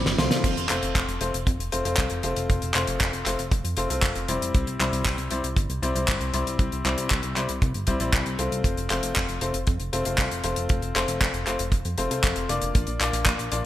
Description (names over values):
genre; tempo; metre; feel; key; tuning
italo disco; 117 BPM; 4/4; straight; F major; A4 = 440 Hz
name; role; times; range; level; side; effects
bright concert grand piano; stabs; 0.0-13.7 s; G3 to D5; -28 LUFS; left 2 dB; digital delay
chorused synth bass; bass; 0.0-13.6 s; F1 to F2; -30 LUFS; right 1 dB; tube saturation
damped 70s drum kit; drums; 0.1-13.6 s; crash cymbal, handclaps, hi-hat, snare drum; -27 LUFS; equal; gated reverb
kick drum; drums; 0.4-13.4 s; none; -24 LUFS; right 1 dB; none
room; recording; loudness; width
moderate plate reverb, RT60 1.6 s, small room ambience; bright 1980s-style digital production; -22 LUFS; side -13 dB against mid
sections
0.4-13.7 A section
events
drum fill 0.0-0.4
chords
0.4 F; 4.5 C; 8.6 F; 12.7 Bb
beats
| 0.44 0.95 1.47 1.98 | 2.49 3.00 3.52 4.03 | 4.54 5.06 5.57 6.08 | 6.59 7.11 7.62 8.13 | 8.65 9.16 9.67 10.18 | 10.70 11.21 11.72 12.24 | 12.75 13.26